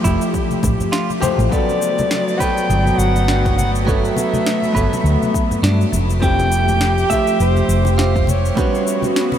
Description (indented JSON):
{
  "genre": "sunset chillout",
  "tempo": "102 BPM",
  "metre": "4/4",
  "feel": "swing 56% on 16ths",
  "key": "unclear",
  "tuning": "A4 = 440 Hz",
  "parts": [
    { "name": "vintage hollow-body jazz guitar", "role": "accompaniment", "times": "0.0-9.4 s", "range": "C#3 to E5", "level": "-22 LUFS", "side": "moving between left 5 dB and right 6 dB", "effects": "auto-pan, analog delay" },
    { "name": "dark chamber string section", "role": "sustained chords", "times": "0.0-9.4 s", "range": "C#3 to G4", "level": "-22 LUFS", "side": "left 1 dB", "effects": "none" },
    { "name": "clean electric guitar", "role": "arpeggios", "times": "0.0-8.8 s", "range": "B3 to E5", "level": "-27 LUFS", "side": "right 3 dB", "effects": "analog delay" },
    { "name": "hollow-body short-scale fingered electric bass", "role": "bass", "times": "0.0-8.5 s", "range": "F1 to G2", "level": "-17 LUFS", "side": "equal", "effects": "none" },
    { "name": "electronic cabasa and snare drum", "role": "drums", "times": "0.0-9.4 s", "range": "none", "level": "-27 LUFS", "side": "equal", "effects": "overdrive" },
    { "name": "electronic kick drum", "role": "drums", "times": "0.0-8.7 s", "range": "none", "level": "-21 LUFS", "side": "equal", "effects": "overdrive" },
    { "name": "congas", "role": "percussion", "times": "0.3-9.4 s", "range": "none", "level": "-28 LUFS", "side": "left 2 dB", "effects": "none" },
    { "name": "mellow soprano saxophone", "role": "melody", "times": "1.5-9.4 s", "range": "C5 to G5", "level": "-22 LUFS", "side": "equal", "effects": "analog delay" }
  ],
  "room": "moderate huge ambient reverb, RT60 8.0 s",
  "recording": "dreamy mix soaked in reverb",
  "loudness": "-14 LUFS",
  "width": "side -9 dB against mid",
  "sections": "0.0-9.4 A section",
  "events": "none",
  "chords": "0.0 Fmaj9; 1.5 Gmaj9#11; 6.2 Fmaj9; 8.6 A13 (rootless)"
}